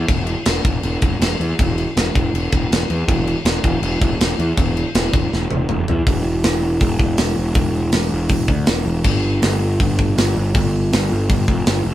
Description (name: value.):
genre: heavy metal.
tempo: 161 BPM.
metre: 4/4.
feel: straight.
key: E phrygian.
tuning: A4 = 440 Hz.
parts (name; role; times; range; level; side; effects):
fuzz picked electric bass; bass; 0.0-11.9 s; E1 to E2; -18 LUFS; equal; overdrive.
tight metal drum kit; drums; 0.1-11.8 s; crash cymbal, hi-hat, kick drum, snare drum, toms; -18 LUFS; equal; none.
room: light reverb.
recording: band playing live in one room.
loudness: -16 LUFS.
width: side -13 dB against mid.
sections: 0.0-6.1 A section; 6.1-11.9 B section.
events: drum fill 5.3-6.1.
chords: none.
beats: | 0.09 0.47 0.84 1.21 | 1.59 1.96 2.34 2.71 | 3.08 3.46 3.83 4.20 | 4.58 4.95 5.32 5.70 | 6.07 6.44 6.82 7.19 | 7.56 7.93 8.31 8.68 | 9.05 9.43 9.80 10.17 | 10.54 10.92 11.29 11.66.